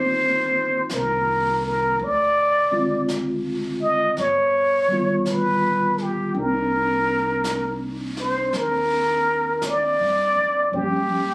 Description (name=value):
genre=jazz ballad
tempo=55 BPM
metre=4/4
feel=swing 66% on 8ths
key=C minor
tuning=A4 = 439 Hz
part: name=trumpet with plunger mute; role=melody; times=0.0-11.3 s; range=G4 to Eb5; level=-19 LUFS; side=equal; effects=none
part: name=tine electric piano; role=accompaniment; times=0.0-11.3 s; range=D3 to G4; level=-26 LUFS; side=equal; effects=medium stereo tremolo
part: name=upright bass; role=bass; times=0.0-11.3 s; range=G1 to G2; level=-35 LUFS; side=equal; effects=none
part: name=jazz brush drum kit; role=drums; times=0.9-11.3 s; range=brushed snare drum, hi-hat, snare drum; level=-36 LUFS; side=equal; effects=none
room=moderate studio reverb, RT60 0.8 s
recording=recorded on a phone in the room, club reverb, compression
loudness=-19 LUFS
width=side -23 dB against mid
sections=0.0-11.3 A section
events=none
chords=0.0 Cm11; 2.0 Dm7b5; 4.2 G7alt; 6.3 Cm9; 10.7 Gm7b5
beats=0.89 | 1.98 3.07 4.16 5.25 | 6.34 7.44 8.53 9.63 | 10.72